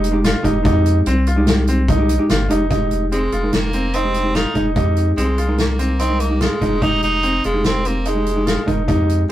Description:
progressive instrumental, band music in an uneven meter; 146 BPM; 5/4; straight; F minor; A4 = 441 Hz
hollow-body jazz guitar; accompaniment; 0.0-9.3 s; Ab3 to Bb4; -21 LUFS; equal
bright concert grand piano; arpeggios; 0.0-9.3 s; C4 to F4; -22 LUFS; right 1 dB
round analog bass; bass; 0.0-9.3 s; F1 to F2; -20 LUFS; equal
soft-mallet drum kit; drums; 0.0-9.3 s; hi-hat, kick drum, snare drum; -21 LUFS; equal
edgy tenor saxophone; melody; 3.1-9.3 s; Ab3 to Eb4; -21 LUFS; right 1 dB
moderate booth ambience, RT60 0.2 s; rough rehearsal-room recording, warm saturation; -15 LUFS; side -13 dB against mid
0.0-2.7 A section; 2.7-9.3 B section
0.0 Fm7; 2.7 Fm11
0.24 | 0.65 1.06 1.47 1.88 2.29 | 2.71 3.12 3.53 3.94 4.35 | 4.76 5.18 5.59 6.00 6.41 | 6.83 7.24 7.65 8.06 8.47 | 8.89 9.30

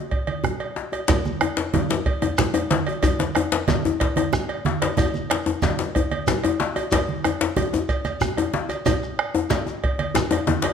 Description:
west african traditional, West African drum ensemble; 124 BPM (dotted quarters); 12/8; straight
bombo; percussion; 0.1-10.7 s; -26 LUFS; right 2 dB
cowbell; percussion; 0.1-10.7 s; -29 LUFS; right 4 dB
djembe; percussion; 0.1-10.7 s; -28 LUFS; left 5 dB
congas; percussion; 0.3-10.6 s; -27 LUFS; right 6 dB
djembe; percussion; 1.1-10.7 s; -24 LUFS; left 6 dB
shekere; percussion; 1.1-10.3 s; -34 LUFS; left 2 dB
moderate recital hall reverb, RT60 1.4 s; close, detailed microphones; -20 LUFS; side -7 dB against mid
0.0-1.1 A section; 1.1-10.7 B section
0.11 0.60 | 1.08 1.57 2.06 2.55 | 3.03 3.52 4.01 4.49 | 4.98 5.46 5.95 6.43 | 6.92 7.41 7.89 8.38 | 8.86 9.34 9.83 10.31

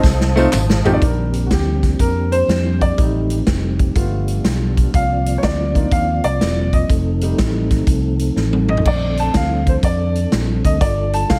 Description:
uptempo gospel; 122 BPM; 4/4; swing 66% on 8ths; Bb major; A4 = 442 Hz
warm horn section; melody; 0.0-0.5 s; C4 to A4; -31 LUFS; equal
mellow tonewheel organ; sustained chords; 0.0-11.4 s; F3 to Eb6; -27 LUFS; equal; chorus vibrato, stopped rotary speaker
fingered electric bass; bass; 0.0-11.4 s; E1 to F2; -22 LUFS; equal
swinging big-band drum kit; drums; 0.0-11.4 s; crash cymbal, hi-hat, kick drum, snare drum, toms; -21 LUFS; equal
tambourine and handclaps; percussion; 0.0-0.9 s; -31 LUFS; equal
warm upright piano; accompaniment; 0.4-11.4 s; G3 to A5; -23 LUFS; equal
light reverb, studio reverb; -17 LUFS; mono
0.0-1.0 A section; 1.0-11.4 B section
drum fill 0.0-1.0, 8.4-8.9; upright piano solo 1.0-11.4
0.0 F7; 1.0 Bb69; 3.0 F9/A; 4.0 G7; 4.9 Cm11; 6.9 F7; 8.9 Bbmaj9; 10.8 G7sus2
0.04 0.53 | 1.02 1.51 2.00 2.49 | 2.98 3.47 3.96 4.45 | 4.94 5.43 5.92 6.41 | 6.90 7.39 7.88 8.37 | 8.86 9.35 9.84 10.32 | 10.81 11.30

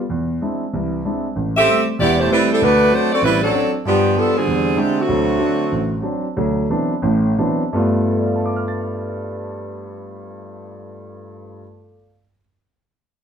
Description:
jazz; 164-193 BPM; 4/4; swing 63% on 8ths; G mixolydian; A4 = 440 Hz
warm grand piano; accompaniment; 0.1-12.4 s; E1 to A6; -20 LUFS; equal
clear saxophone section; melody; 1.6-6.0 s; D3 to E5; -15 LUFS; right 1 dB
wet studio reverb, RT60 0.8 s; band playing live in one room; -16 LUFS; side -7 dB against mid
0.0-6.4 A section; 6.4-7.7 B section; 7.7-10.7 C section
slowing down 5.1-7.7
0.1 Eaug7; 1.4 Am7; 2.6 D7; 3.8 G7; 4.5 E7alt; 5.1 D7; 6.4 D13; 7.7 G9
| 0.10 0.41 0.73 1.04 | 1.35 1.66 1.97 2.28 | 2.60 2.91 3.22 3.53 | 3.84 4.15 4.46 4.77 | 5.08 5.40 5.71 6.03 | 6.35 6.68 7.02 7.37 | 7.73 8.10 8.46 8.82 | 9.19 9.55 9.92 10.29

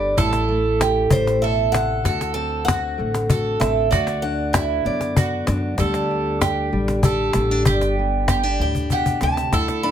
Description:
acoustic folk duo or small band; 64 BPM (dotted quarters); 6/8; straight; A4 = 441 Hz
picked old ladder-braced acoustic guitar; melody; 0.0-5.5, 8.6-9.9 s; A4 to B5; -23 LUFS; right 2 dB; plate reverb
fingerpicked steel-string acoustic guitar; accompaniment; 0.0-9.9 s; G2 to G4; -24 LUFS; left 2 dB
bowl-back mandolin; arpeggios; 0.0-9.9 s; E4 to B5; -26 LUFS; right 7 dB
upright bass; bass; 0.0-9.9 s; G1 to F#2; -25 LUFS; equal
cajon; percussion; 0.2-9.9 s; -21 LUFS; left 2 dB
moderate studio reverb, RT60 0.5 s; -18 LUFS; side -9 dB against mid
0.0-2.1 A section; 2.1-9.9 B section
drum fill 8.7-9.5
0.2 Am; 2.1 D7; 3.9 Bm/D; 5.8 Dsus4; 7.7 G
| 0.18 1.11 | 2.05 2.99 | 3.92 4.86 | 5.79 6.73 | 7.66 8.59 | 9.53

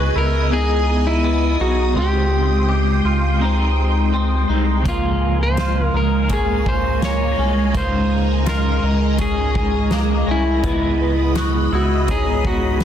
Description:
dream pop; 83 BPM; 4/4; straight; Db lydian; A4 = 440 Hz
electric guitar at the edge of break-up; melody; 0.0-12.8 s; E4 to Db5; -23 LUFS; left 1 dB; ping-pong delay
electric guitar at the edge of break-up; accompaniment; 0.0-12.8 s; Db3 to D#5; -25 LUFS; right 3 dB; tremolo, analog chorus
phased string machine; sustained chords; 0.0-12.8 s; Ab3 to D#6; -23 LUFS; equal; ensemble chorus, phaser
clean electric guitar; arpeggios; 0.0-12.8 s; Bb3 to G4; -26 LUFS; left 2 dB; ensemble chorus, ping-pong delay
round analog bass; bass; 0.0-12.8 s; B1 to Db2; -20 LUFS; equal
soft-mallet drum kit; drums; 4.9-12.8 s; hi-hat, kick drum, snare drum; -25 LUFS; equal
shimmering bell with halo; texture; 6.3-12.8 s; Bb4 to Db5; -33 LUFS; left 1 dB; ensemble chorus, phaser, ping-pong delay
light reverb, studio ambience; dense, heavily limited modern master; -16 LUFS; side -9 dB against mid
0.0-12.8 A section
0.0 Emaj7/Db; 2.0 Abmaj7/Db; 4.9 Db6; 10.6 Emaj7/Db
0.52 1.24 | 1.97 2.69 3.41 4.13 | 4.86 5.58 6.30 7.03 | 7.75 8.47 9.19 9.92 | 10.64 11.36 12.09 12.81

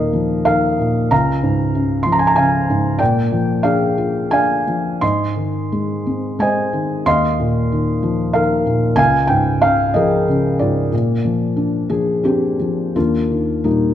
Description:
classical, lyrical solo piano; 84-96 BPM; 3/4; rubato; Eb major; A4 = 437 Hz
felt-muted upright piano; solo; 0.0-13.9 s; Db2 to C6; -15 LUFS; equal
moderate scoring stage reverb, RT60 1.9 s; dark, warm production; -15 LUFS; side -10 dB against mid
0.0-13.0 A section
0.0 Ebsus2; 1.1 Db6; 3.0 Bb7; 5.0 Ab; 7.1 Ebsus2; 9.0 Db6; 10.9 Bbadd9; 13.0 Ebmaj7
0.47 | 1.11 1.75 2.38 | 3.00 3.64 4.32 | 5.02 5.73 6.40 | 7.06 7.72 8.35 | 8.98 9.63 10.29 | 10.93 11.56 12.24 | 12.95 13.64

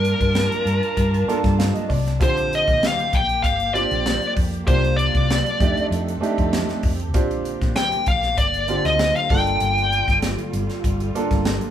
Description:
electric jazz fusion; 97 BPM; 4/4; straight; Bb major; A4 = 441 Hz
smooth overdriven lead guitar; melody; 0.0-10.2 s; Bb4 to G5; -21 LUFS; left 1 dB
clear baby grand piano; accompaniment; 0.0-11.7 s; D3 to A5; -26 LUFS; right 4 dB
warm studio string section; sustained chords; 0.0-11.7 s; C3 to A5; -32 LUFS; right 1 dB
hollow-body short-scale fingered electric bass; bass; 0.0-11.6 s; G1 to G2; -24 LUFS; left 1 dB
crisp fusion drum kit; drums; 0.0-11.7 s; hi-hat, kick drum, snare drum; -23 LUFS; equal
moderate large studio reverb, RT60 1.1 s; band playing live in one room; -18 LUFS; side -10 dB against mid
0.0-11.7 A section
grand piano fill 1.0-2.2
0.0 Gm9; 2.2 Bb69; 4.7 C9sus4; 5.6 F13; 7.1 Bb69; 9.3 Gm9
0.35 0.97 1.59 | 2.20 2.82 3.44 4.05 | 4.67 5.29 5.91 6.52 | 7.14 7.76 8.37 8.99 | 9.61 10.22 10.84 11.45

